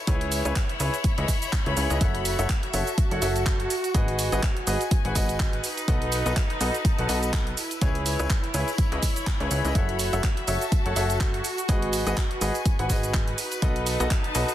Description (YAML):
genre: piano house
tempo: 124 BPM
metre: 4/4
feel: swing 56% on 16ths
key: F# dorian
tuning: A4 = 440 Hz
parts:
  - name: clear studio string section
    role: texture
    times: 0.0-14.5 s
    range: D#4 to B5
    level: -31 LUFS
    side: left 1 dB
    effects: sidechain pumping
  - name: clear concert grand piano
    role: riff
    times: 0.1-14.5 s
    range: E4 to F#5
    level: -29 LUFS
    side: left 1 dB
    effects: sidechain pumping, tape echo
  - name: plucky analog bass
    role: bass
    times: 0.1-14.4 s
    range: F#1 to C#2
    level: -28 LUFS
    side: equal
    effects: tube saturation, sidechain pumping
  - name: electronic kick drum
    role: drums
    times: 0.1-14.2 s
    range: none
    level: -24 LUFS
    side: equal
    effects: none
  - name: house drum kit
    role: drums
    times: 0.1-14.5 s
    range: handclaps, hi-hat, shaker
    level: -32 LUFS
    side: right 3 dB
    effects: soft clipping on snare
  - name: tambourine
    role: percussion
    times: 0.1-14.5 s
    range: none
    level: -40 LUFS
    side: right 1 dB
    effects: none
room: light reverb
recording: dense, heavily limited modern master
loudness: -22 LUFS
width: side -12 dB against mid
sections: 0.0-14.5 A section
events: none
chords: 0.0 C#m7; 2.0 F#m7; 3.7 G#m7; 5.6 B7; 7.6 C#m7; 9.8 F#m7; 11.4 G#m7; 13.4 B7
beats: | 0.07 0.56 1.04 1.53 | 2.01 2.49 2.98 3.46 | 3.94 4.43 4.91 5.40 | 5.88 6.37 6.85 7.33 | 7.82 8.30 8.78 9.27 | 9.75 10.24 10.72 11.20 | 11.69 12.17 12.65 13.14 | 13.62 14.11